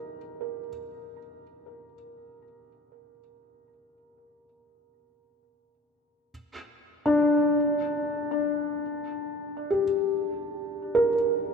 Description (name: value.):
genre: ambient.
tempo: free time.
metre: none.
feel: none.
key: unclear.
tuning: A4 = 441 Hz.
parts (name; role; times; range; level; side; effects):
felt-muted upright piano; solo; 0.0-11.5 s; D4 to Bb4; -25 LUFS; left 1 dB; ping-pong delay.
room: wet cathedral reverb, RT60 5.4 s.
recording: in a vast, echoing space.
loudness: -24 LUFS.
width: side -4 dB against mid.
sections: 0.0-11.5 A section.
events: none.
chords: 0.0 Eb; 6.3 N.C..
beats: free time.